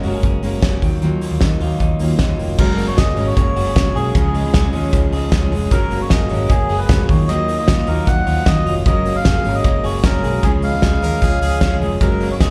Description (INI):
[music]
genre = jangly indie pop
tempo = 153 BPM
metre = 4/4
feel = straight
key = F# major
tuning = A4 = 442 Hz
[part]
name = brilliant trumpet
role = second line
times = 0.0-0.2, 11.0-11.9 s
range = G#3 to A#4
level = -32 LUFS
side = equal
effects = none
[part]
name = fingerpicked steel-string acoustic guitar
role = accompaniment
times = 0.0-12.5 s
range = C#3 to A#4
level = -25 LUFS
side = equal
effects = none
[part]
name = electric guitar through a small old amp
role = arpeggios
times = 0.0-12.5 s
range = C#3 to G#4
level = -27 LUFS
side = equal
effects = spring reverb
[part]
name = vintage muted fingered electric bass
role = bass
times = 0.0-12.5 s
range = E#1 to D#2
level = -23 LUFS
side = equal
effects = none
[part]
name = loose indie drum kit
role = drums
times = 0.0-12.5 s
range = crash cymbal, hi-hat, kick drum, ride cymbal, snare drum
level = -20 LUFS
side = equal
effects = none
[part]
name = melodica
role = melody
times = 2.6-12.5 s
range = G#4 to F#5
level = -25 LUFS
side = equal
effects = none
[sound]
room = light reverb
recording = live gig heard through the venue's PA, club reverb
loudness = -17 LUFS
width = mono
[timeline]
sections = 0.0-2.6 A section; 2.6-12.5 B section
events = none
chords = 0.0 F#add9; 0.8 D#madd9; 2.6 F#add9; 4.2 C#; 5.7 F#add9; 7.1 D#madd9; 8.9 F#add9; 10.4 C#